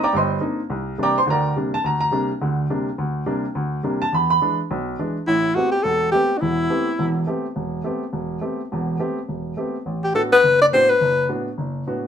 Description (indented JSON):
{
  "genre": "jazz",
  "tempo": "209 BPM",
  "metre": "4/4",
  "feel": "swing 60% on 8ths",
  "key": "A dorian from 5.3 s",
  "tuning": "A4 = 441 Hz",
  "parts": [
    { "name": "warm upright piano", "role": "accompaniment", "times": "0.0-12.1 s", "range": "E1 to D6", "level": "-21 LUFS", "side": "right 1 dB", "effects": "none" },
    { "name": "breathy alto saxophone", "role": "melody", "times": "5.3-7.3, 10.0-11.3 s", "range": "D4 to D5", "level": "-16 LUFS", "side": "left 2 dB", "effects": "none" }
  ],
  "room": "wet studio reverb, RT60 0.8 s",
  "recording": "minimal, uncompressed stereo recording",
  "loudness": "-19 LUFS",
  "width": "side -8 dB against mid",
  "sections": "0.0-5.3 A section; 5.3-12.1 B section",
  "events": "none",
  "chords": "0.0 Cm9; 0.7 Gm/C; 4.1 E7; 5.3 Am9; 9.8 Bm",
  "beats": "0.13 0.41 | 0.70 0.98 1.27 1.55 | 1.84 2.12 2.40 2.69 | 2.98 3.26 3.54 3.83 | 4.12 4.40 4.69 4.97 | 5.26 5.54 5.83 6.12 | 6.40 6.69 6.98 7.26 | 7.55 7.84 8.13 8.41 | 8.70 8.99 9.28 9.56 | 9.85 10.14 10.43 10.71 | 11.00 11.29 11.58 11.86"
}